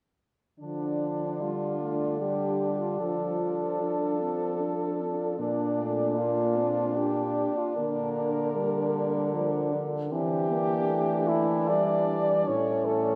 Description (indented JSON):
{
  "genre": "classical, lyrical piece for horn quartet",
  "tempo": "76 BPM",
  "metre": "3/4",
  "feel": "rubato",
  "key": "D minor",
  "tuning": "A4 = 441 Hz",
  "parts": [
    { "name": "clear French horn", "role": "melody", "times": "0.6-13.2 s", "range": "D4 to D5", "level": "-33 LUFS", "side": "equal", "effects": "none" },
    { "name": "dark French horn", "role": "second line", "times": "0.6-13.2 s", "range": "F3 to D4", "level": "-36 LUFS", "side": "equal", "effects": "none" },
    { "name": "clear French horn", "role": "accompaniment", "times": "0.6-13.2 s", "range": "C#4 to D4", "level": "-34 LUFS", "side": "equal", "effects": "none" },
    { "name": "warm French horn", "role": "bass", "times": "0.6-13.2 s", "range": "A2 to F3", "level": "-34 LUFS", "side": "equal", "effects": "none" }
  ],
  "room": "wet cathedral reverb, RT60 5.1 s",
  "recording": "heard from further back in the room",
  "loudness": "-28 LUFS",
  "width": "mono",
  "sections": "0.6-13.2 A section",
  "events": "none",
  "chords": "0.6 Dm; 3.0 Dm/F; 5.4 Bb; 7.8 Bb/D; 10.1 Em7; 12.5 A"
}